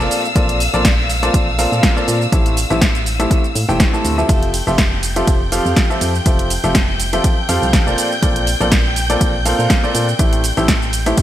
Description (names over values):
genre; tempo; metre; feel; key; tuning
piano house; 122 BPM; 4/4; swing 55% on 16ths; unclear; A4 = 439 Hz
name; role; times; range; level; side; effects
warm studio violin section; sustained chords; 0.0-11.2 s; F5 to G6; -23 LUFS; equal; sidechain pumping
bright upright piano; riff; 0.0-11.2 s; A2 to A5; -19 LUFS; equal; sidechain pumping, ping-pong delay
solid FM bass; bass; 0.0-11.1 s; E1 to Bb2; -20 LUFS; equal; sidechain pumping
punchy analog drum machine; drums; 0.0-11.2 s; hi-hat, ride cymbal, shaker, snare drum; -20 LUFS; equal; overdrive, gated reverb
electronic kick drum; drums; 0.4-11.2 s; none; -16 LUFS; equal; overdrive
room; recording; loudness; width
light reverb, digital ambience; bright 1980s-style digital production; -13 LUFS; side -12 dB against mid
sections
0.0-11.2 A section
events
none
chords
0.1 Bbmaj9; 2.3 Am7; 4.3 Fmaj9; 8.0 Bbmaj9; 10.2 Am7